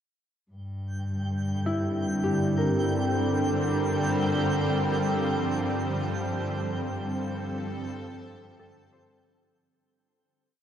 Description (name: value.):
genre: ambient.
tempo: 52 BPM.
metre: 4/4.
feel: straight.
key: G dorian.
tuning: A4 = 440 Hz.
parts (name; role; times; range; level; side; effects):
shimmering ambient pad; sustained chords; 1.4-9.7 s; D3 to Bb4; -28 LUFS; right 1 dB; chorus, built-in reverb.
clear studio cello section; bass; 0.5-9.7 s; G2; -32 LUFS; left 1 dB; tube saturation.
analog drone; drone; 0.9-9.9 s; G3; -35 LUFS; left 1 dB; chorus.
twinkling granular texture; texture; 0.9-9.8 s; G5; -36 LUFS; right 2 dB; built-in reverb.
Celtic harp; arpeggios; 1.7-10.6 s; E4 to C5; -34 LUFS; left 1 dB; diffuse ambient delay.
room: wet huge ambient reverb, RT60 7.5 s.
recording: dark, warm production.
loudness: -25 LUFS.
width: side -9 dB against mid.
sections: 0.5-9.7 A section.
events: fade-out 5.1-9.7.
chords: 0.5 Gm; 5.1 Fadd9/G.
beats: | 0.51 1.66 2.82 3.97 | 5.12 6.28 7.43 8.59.